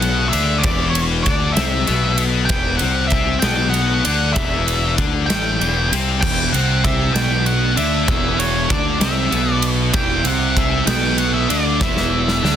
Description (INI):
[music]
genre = quiet-loud alternative rock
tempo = 64 BPM (dotted quarters)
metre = 6/8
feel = straight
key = E minor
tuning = A4 = 440 Hz
[part]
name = octave-fuzz lead guitar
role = melody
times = 0.0-12.6 s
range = C#5 to G5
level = -22 LUFS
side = right 2 dB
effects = distortion
[part]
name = tight distorted guitar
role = riff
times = 0.0-12.6 s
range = E2 to D4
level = -21 LUFS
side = left 9 dB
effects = distortion
[part]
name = fuzz fingered electric bass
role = bass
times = 0.0-12.6 s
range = E1 to D2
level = -21 LUFS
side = equal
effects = overdrive
[part]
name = big rock drum kit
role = drums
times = 0.0-12.6 s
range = crash cymbal, kick drum, ride cymbal, snare drum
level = -21 LUFS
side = equal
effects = none
[part]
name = thick fuzz guitar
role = riff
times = 6.2-12.6 s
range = E2 to D4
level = -23 LUFS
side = right 13 dB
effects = distortion
[sound]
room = little or no reverb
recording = dense, heavily limited modern master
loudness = -15 LUFS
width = side -9 dB against mid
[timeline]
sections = 0.0-12.6 A section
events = drum fill 11.8-12.6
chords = 0.0 E5